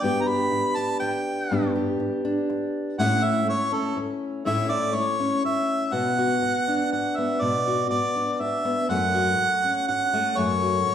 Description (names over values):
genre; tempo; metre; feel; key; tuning
acoustic folk duo or small band; 122 BPM; 3/4; straight; unclear; A4 = 440 Hz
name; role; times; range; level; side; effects
warm harmonica; melody; 0.0-10.9 s; A4 to B5; -24 LUFS; right 1 dB; none
fingerpicked steel-string acoustic guitar; accompaniment; 0.0-10.9 s; F#2 to G4; -25 LUFS; left 2 dB; none
room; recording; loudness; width
wet recital hall reverb, RT60 1.3 s; heard from further back in the room; -22 LUFS; side -9 dB against mid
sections
0.0-5.9 A section; 5.9-10.9 B section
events
harmonica solo 0.0-5.9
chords
0.0 G; 3.0 A; 5.9 Bm; 8.9 F#m